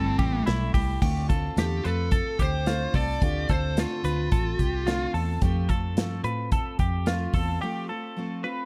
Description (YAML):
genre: jangly indie pop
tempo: 109 BPM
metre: 4/4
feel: straight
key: D dorian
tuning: A4 = 443 Hz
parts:
  - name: fuzz lead guitar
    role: melody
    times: 0.0-5.1 s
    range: C4 to D5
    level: -34 LUFS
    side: equal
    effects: distortion, plate reverb, tape echo
  - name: picked steel-string acoustic guitar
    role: accompaniment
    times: 0.0-8.7 s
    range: C3 to F4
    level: -36 LUFS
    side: equal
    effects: none
  - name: twelve-string electric guitar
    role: arpeggios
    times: 0.0-8.7 s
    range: E4 to B4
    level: -35 LUFS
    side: equal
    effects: plate reverb
  - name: vintage muted fingered electric bass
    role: bass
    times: 0.0-7.6 s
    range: G1 to A2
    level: -30 LUFS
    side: equal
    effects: none
  - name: modern studio drum kit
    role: drums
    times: 0.2-7.5 s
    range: crash cymbal, hi-hat, kick drum, ride cymbal, snare drum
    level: -29 LUFS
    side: equal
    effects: none
room: little or no reverb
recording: dark, warm production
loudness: -26 LUFS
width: mono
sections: 0.0-1.0 A section; 1.0-8.7 B section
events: break 7.6-8.7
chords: 0.0 C6; 1.0 Dm7; 5.4 F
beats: 0.47 | 1.02 1.57 2.12 2.67 | 3.22 3.77 4.32 4.87 | 5.42 5.97 6.52 7.07 | 7.62 8.16